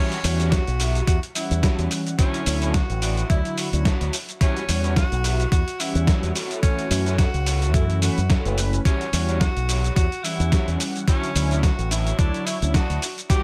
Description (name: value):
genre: nu-disco, nu disco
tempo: 108 BPM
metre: 4/4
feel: swing 56% on 16ths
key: E dorian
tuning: A4 = 440 Hz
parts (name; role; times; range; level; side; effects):
- warm tenor saxophone; melody; 0.0-13.4 s; C#4 to G4; -33 LUFS; equal; delay
- mellow synth brass; accompaniment; 0.0-13.4 s; D3 to F#5; -32 LUFS; equal; chorus, sidechain pumping
- electric guitar at the edge of break-up; riff; 0.0-13.4 s; D4 to E5; -35 LUFS; equal; analog chorus
- dusty soul sampler-style drum kit; drums; 0.1-13.4 s; hi-hat, shaker, snare drum; -30 LUFS; equal; overdrive
- fingered electric bass with an envelope filter; bass; 0.2-13.0 s; F#1 to F#2; -25 LUFS; equal; none
- electronic kick drum; drums; 0.5-13.4 s; none; -22 LUFS; equal; overdrive
room: digital ambience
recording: none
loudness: -22 LUFS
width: mono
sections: 0.0-13.4 A section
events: none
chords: 0.0 Em69; 2.2 Dmaj9; 4.4 Em69; 6.4 F#m7; 8.9 Em69; 11.1 Dmaj9